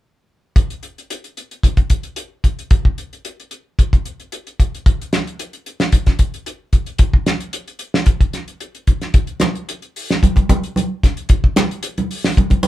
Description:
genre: afrobeat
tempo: 112 BPM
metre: 4/4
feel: straight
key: none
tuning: none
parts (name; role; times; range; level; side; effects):
- damped 70s drum kit; drums; 0.6-12.7 s; hi-hat, kick drum, snare drum; -15 LUFS; equal; none
- congas; percussion; 9.4-12.7 s; none; -19 LUFS; right 2 dB; none
room: light reverb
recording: band playing live in one room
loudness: -15 LUFS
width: side -15 dB against mid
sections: 0.6-12.7 A section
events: none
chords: none

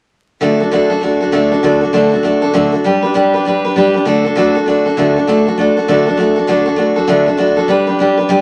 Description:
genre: rock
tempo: 198 BPM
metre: 4/4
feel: swing 63% on 8ths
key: D major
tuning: A4 = 438 Hz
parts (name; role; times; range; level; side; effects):
- picked steel-string acoustic guitar; solo; 0.4-8.4 s; D3 to B4; -13 LUFS; equal; none
room: moderate studio reverb, RT60 0.6 s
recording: vinyl crackle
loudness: -13 LUFS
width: mono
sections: 0.4-5.3 A section; 5.3-8.4 B section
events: none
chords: 0.4 D; 2.8 G; 4.1 D; 7.7 G

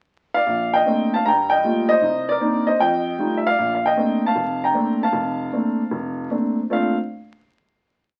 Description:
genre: solo jazz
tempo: 154 BPM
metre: 4/4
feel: swing 66% on 8ths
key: Bb major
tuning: A4 = 440 Hz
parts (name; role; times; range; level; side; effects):
- warm upright piano; solo; 0.3-7.0 s; F1 to Bb5; -20 LUFS; equal; none
room: moderate small room reverb, RT60 0.6 s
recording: very old 78 rpm record, vinyl crackle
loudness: -20 LUFS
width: mono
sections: 0.0-0.5 pickup bar; 0.5-6.7 A section; 6.7-8.2 final chord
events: none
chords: 0.5 Bbmaj9; 1.2 Gm9; 2.0 Cm9; 2.8 F9; 3.6 Bbmaj9

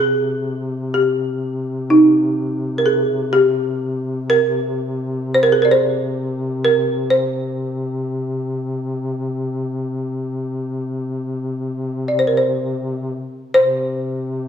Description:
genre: caucasian folk, Caucasian lament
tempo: 55-65 BPM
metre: 4/4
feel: rubato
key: C minor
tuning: A4 = 439 Hz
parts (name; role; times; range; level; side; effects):
- folk marimba with medium hard mallets; melody; 0.0-14.5 s; Eb4 to D5; -15 LUFS; right 1 dB; none
- mellow duduk; drone; 0.0-14.5 s; C3; -23 LUFS; left 2 dB; none
room: wet recital hall reverb, RT60 1.6 s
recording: recorded in a church or concert hall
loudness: -17 LUFS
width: side -8 dB against mid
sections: 0.0-13.6 A section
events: none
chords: none

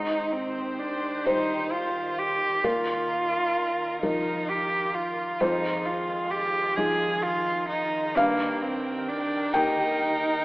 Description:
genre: neoclassical piano and strings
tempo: 44 BPM (dotted quarters)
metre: 6/8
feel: rubato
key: Eb major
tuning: A4 = 440 Hz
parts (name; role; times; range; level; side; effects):
- rich cello; second line; 0.0-10.4 s; Bb3 to Ab4; -26 LUFS; right 1 dB; none
- felt-muted upright piano; accompaniment; 0.0-10.4 s; F2 to G5; -28 LUFS; left 1 dB; none
- dark chamber string section; sustained chords; 0.0-10.4 s; Eb3 to G5; -35 LUFS; equal; none
room: wet scoring stage reverb, RT60 1.9 s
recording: AM radio sound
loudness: -24 LUFS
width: side -22 dB against mid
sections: 0.0-10.4 A section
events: none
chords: 0.0 Abmaj7; 2.6 Bbsus4; 5.4 Fm7; 8.2 Eb/G

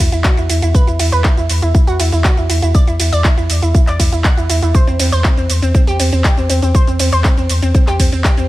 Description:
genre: progressive house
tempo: 120 BPM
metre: 4/4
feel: straight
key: E minor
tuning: A4 = 441 Hz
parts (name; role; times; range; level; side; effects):
- analog pluck; arpeggios; 0.0-8.5 s; C4 to F#5; -19 LUFS; right 1 dB; chorus, cassette tape, sidechain pumping, dub echo
- saturated sub bass; bass; 0.0-8.5 s; E2; -15 LUFS; equal; sidechain pumping
- electronic kick drum; drums; 0.0-8.3 s; none; -12 LUFS; equal; studio reverb
- house drum kit; drums; 0.0-8.5 s; handclaps, hi-hat, ride cymbal, shaker; -20 LUFS; right 1 dB; studio reverb
room: little or no reverb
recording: none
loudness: -11 LUFS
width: side -16 dB against mid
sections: 0.0-8.5 A section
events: none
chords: 0.0 E5; 4.7 C/E

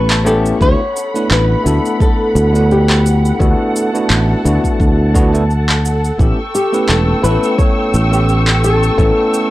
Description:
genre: sunset chillout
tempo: 86 BPM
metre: 4/4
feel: swing 55% on 16ths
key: D major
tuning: A4 = 439 Hz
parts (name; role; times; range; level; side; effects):
- flamenco guitar; melody; 0.0-9.5 s; F#4 to C#5; -18 LUFS; left 2 dB; tape echo
- barky tine electric piano; accompaniment; 0.0-9.5 s; A3 to F#5; -18 LUFS; equal; auto-pan
- muted studio string section; sustained chords; 0.0-9.5 s; G3 to E6; -21 LUFS; equal; none
- sustaining fretless electric bass; bass; 0.0-9.1 s; E1 to D2; -14 LUFS; equal; none
- electronic handclaps and cabasa; drums; 0.1-9.5 s; none; -19 LUFS; equal; none
- electronic kick drum; drums; 0.6-9.1 s; none; -14 LUFS; equal; none
room: little or no reverb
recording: dry, gritty hardware recording, transformer saturation, cassette tape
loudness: -11 LUFS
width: side -16 dB against mid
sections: 0.0-9.5 A section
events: none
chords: 0.0 A7; 0.6 D6; 6.2 A7

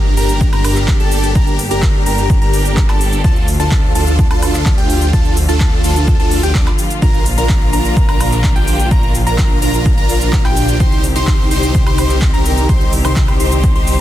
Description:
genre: EDM, festival progressive house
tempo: 127 BPM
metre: 4/4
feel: straight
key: G minor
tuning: A4 = 440 Hz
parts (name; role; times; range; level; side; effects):
- rich studio string section; sustained chords; 0.0-14.0 s; D3 to G4; -25 LUFS; equal; sidechain pumping
- plucky unison lead; arpeggios; 0.0-14.0 s; G5 to D6; -23 LUFS; left 1 dB; sidechain pumping, ping-pong delay
- supersaw chords; riff; 0.0-14.0 s; D4 to D5; -19 LUFS; equal; phaser, sidechain pumping, ping-pong delay
- wide detuned saw bass; bass; 0.0-14.0 s; G1 to D2; -18 LUFS; equal; chorus, sidechain pumping
- impact; sound effects; 0.0-1.4 s; none; -29 LUFS; equal; none
- big-room dance drum kit; drums; 0.2-14.0 s; handclaps, hi-hat, shaker, woodblock; -24 LUFS; right 1 dB; overdrive
- electronic kick drum; drums; 0.4-13.7 s; none; -14 LUFS; equal; overdrive
room: little or no reverb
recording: dense, heavily limited modern master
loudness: -11 LUFS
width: side -13 dB against mid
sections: 0.0-14.0 A section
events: impact 0.0-1.4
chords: 0.0 Gm; 3.2 Dm; 7.0 Bb; 10.8 Cm

